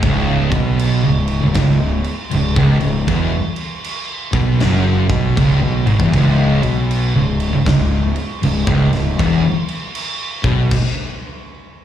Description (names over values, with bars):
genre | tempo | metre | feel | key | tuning
stoner and doom metal | 79 BPM | 4/4 | swing 64% on 8ths | C# minor | A4 = 440 Hz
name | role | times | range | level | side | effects
thick fuzz guitar | riff | 0.0-10.7 s | C#2 to B2 | -21 LUFS | left 9 dB | distortion, slapback echo
thick fuzz guitar | riff | 0.0-10.7 s | C#2 to B2 | -17 LUFS | right 4 dB | distortion, slapback echo
fuzz fingered electric bass | bass | 0.0-10.7 s | C#1 to B1 | -20 LUFS | left 1 dB | overdrive
big rock drum kit | drums | 0.0-10.9 s | crash cymbal, kick drum, snare drum | -22 LUFS | equal | none
room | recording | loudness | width
light reverb | live gig heard through the venue's PA, club reverb | -14 LUFS | side -10 dB against mid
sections
0.0-11.8 A section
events
stop 10.7-11.8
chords
0.0 C#m